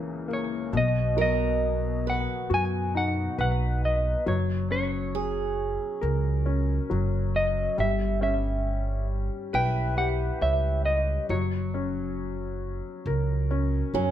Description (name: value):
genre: acoustic folk-pop ballad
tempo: 68 BPM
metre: 4/4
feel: straight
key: B major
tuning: A4 = 439 Hz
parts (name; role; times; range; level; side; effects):
- clean electric guitar; melody; 0.0-13.9 s; A#4 to G#5; -28 LUFS; right 1 dB; tremolo, slapback echo
- felt-muted upright piano; accompaniment; 0.0-14.1 s; C#2 to C#5; -31 LUFS; left 5 dB; none
- upright bass; bass; 0.7-14.1 s; F#1 to F#2; -27 LUFS; right 1 dB; none
- picked old ladder-braced acoustic guitar; arpeggios; 1.2-14.1 s; C#4 to B4; -32 LUFS; right 8 dB; none
room: light reverb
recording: none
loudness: -24 LUFS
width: side -11 dB against mid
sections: 0.7-14.1 A section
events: none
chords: 0.0 F#7 (rootless); 0.7 B; 4.3 F#add9; 7.8 Em6/G; 11.3 F#